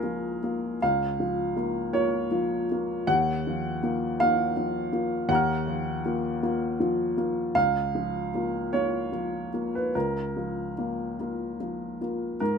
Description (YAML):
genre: neoclassical minimalist piano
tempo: 48-55 BPM (dotted quarters)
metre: 6/8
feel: rubato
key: unclear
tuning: A4 = 445 Hz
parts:
  - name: warm upright piano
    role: solo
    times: 0.0-12.6 s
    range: Db2 to F6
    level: -25 LUFS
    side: equal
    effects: none
room: moderate studio reverb, RT60 0.5 s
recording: minimal, uncompressed stereo recording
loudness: -25 LUFS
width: side -6 dB against mid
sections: 0.0-12.4 A section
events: none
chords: 0.0 Bbm/Db; 3.1 Ebmadd9; 7.5 Bbm/Db